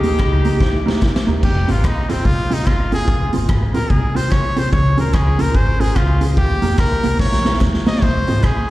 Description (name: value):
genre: ska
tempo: 146 BPM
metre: 4/4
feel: swing 62% on 8ths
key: F minor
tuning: A4 = 440 Hz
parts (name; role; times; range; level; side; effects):
- warm horn section; melody; 0.0-1.0 s; Eb4 to G4; -26 LUFS; left 1 dB; dub echo
- mellow electric guitar; accompaniment; 0.0-8.4 s; Bb3 to Ab4; -23 LUFS; right 2 dB; tremolo, dub echo, slapback echo
- upright bass; bass; 0.0-8.7 s; F1 to F2; -19 LUFS; equal; none
- raw garage drum kit; drums; 0.0-8.6 s; crash cymbal, hi-hat, kick drum, rim click, snare drum, splash cymbal; -18 LUFS; equal; none
- group handclap; percussion; 0.2-8.6 s; none; barely audible; none; none
- brilliant trumpet; melody; 1.4-8.7 s; C4 to Eb5; -22 LUFS; equal; dub echo, slapback echo
room: light reverb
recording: live gig heard through the venue's PA, recital hall reverb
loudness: -14 LUFS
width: side -17 dB against mid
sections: 0.0-1.4 A section; 1.4-8.7 B section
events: drum fill 0.6-1.4, 7.2-8.0; trumpet solo 1.4-8.7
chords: 0.0 Eb; 1.4 Fm; 4.7 Db; 6.4 Eb; 8.0 Fm